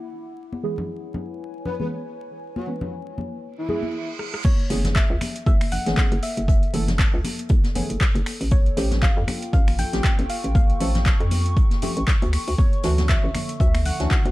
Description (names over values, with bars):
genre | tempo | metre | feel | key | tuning
deep house | 118 BPM | 4/4 | swing 57% on 16ths | F# minor | A4 = 440 Hz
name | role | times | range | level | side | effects
warbly tape-like pad | texture | 0.0-14.3 s | D3 to D6 | -36 LUFS | equal | chorus, built-in reverb, sidechain pumping
congas | percussion | 0.5-14.3 s | none | -32 LUFS | left 2 dB | none
deep mellow chord stab | stabs | 0.6-14.2 s | E3 to B4 | -30 LUFS | right 1 dB | chorus, phaser, cassette tape, sidechain pumping, digital delay
breathy flute-like synth lead | melody | 1.7-4.1 s | E4 to B4 | -32 LUFS | equal | ensemble chorus, ping-pong delay
reverse cymbal | sound effects | 3.6-4.4 s | none | -36 LUFS | right 6 dB | none
deep house drum kit | drums | 4.2-14.3 s | crash cymbal, finger snaps, handclaps, hi-hat, rim click | -29 LUFS | equal | overdrive, small room ambience
soft round pluck | melody | 4.4-14.3 s | C#5 to G5 | -32 LUFS | left 1 dB | chorus, tape echo
electronic kick drum | drums | 4.4-14.2 s | none | -19 LUFS | equal | overdrive, small room ambience
jazz brush drum kit | drums | 4.4-14.2 s | hi-hat, snare drum | -38 LUFS | left 2 dB | sidechain pumping on hats, high-pass filter on hats, small room ambience, high-pass filter on snare, high-pass filter on room
hollow knocking FM bass | bass | 4.7-14.3 s | E#1 to E#2 | -24 LUFS | equal | sidechain pumping
room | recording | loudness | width
little or no reverb | vinyl crackle | -19 LUFS | side -18 dB against mid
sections
0.0-4.4 A section; 4.4-14.3 B section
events
filter sweep on synth stab 0.0-4.4; reverse cymbal 3.6-4.4; break 3.9-4.4; drum fill 4.2; drop 4.4-14.3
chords
0.1 C#m7; 4.4 F#m11; 8.5 A7alt; 12.3 Dmaj9